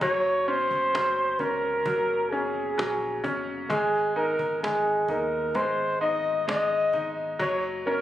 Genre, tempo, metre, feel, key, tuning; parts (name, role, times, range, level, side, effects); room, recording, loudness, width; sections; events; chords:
pop ballad; 65 BPM; 4/4; straight; A4 = 441 Hz
breathy flugelhorn; melody; 0.0-8.0 s; Ab4 to Eb5; -25 LUFS; equal
bright grand piano; accompaniment; 0.0-8.0 s; Gb3 to Eb4; -30 LUFS; left 2 dB
sub bass with octave; bass; 0.0-8.0 s; Gb1 to Eb2; -45 LUFS; right 1 dB
cajon; drums; 0.0-7.6 s; -34 LUFS; right 1 dB
light reverb, small room ambience; recorded on a phone in the room, studio reverb; -24 LUFS; side -12 dB against mid
0.0-8.0 A section
0.0 Gb; 3.7 Ab5; 7.4 Gb